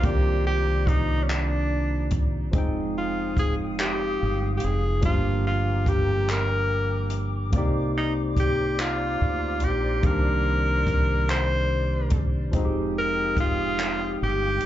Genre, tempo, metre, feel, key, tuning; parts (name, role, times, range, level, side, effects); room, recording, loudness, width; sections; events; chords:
slow six-eight R&B; 48 BPM (dotted quarters); 6/8; straight; C minor; A4 = 439 Hz
warm tenor saxophone; melody; 0.0-14.7 s; Db4 to C5; -27 LUFS; equal; slapback echo, tape echo
barky tine electric piano; accompaniment; 0.0-14.7 s; D3 to G5; -30 LUFS; right 1 dB; overdrive, auto-pan, slapback echo
breathy mellow flute section; sustained chords; 0.0-14.7 s; F4 to Eb6; -37 LUFS; left 2 dB
deep dub fingered electric bass; bass; 0.0-14.6 s; F1 to D2; -26 LUFS; equal
compact cocktail drum kit; drums; 0.0-14.7 s; handclaps, hi-hat, kick drum; -26 LUFS; equal
light reverb; live gig heard through the venue's PA, club reverb, nothing above 7.7 kHz; -22 LUFS; side -12 dB against mid
0.0-14.7 A section
0.0 Cm9; 2.5 Fm9; 5.0 Gm7; 7.5 Cm9; 12.5 Fm9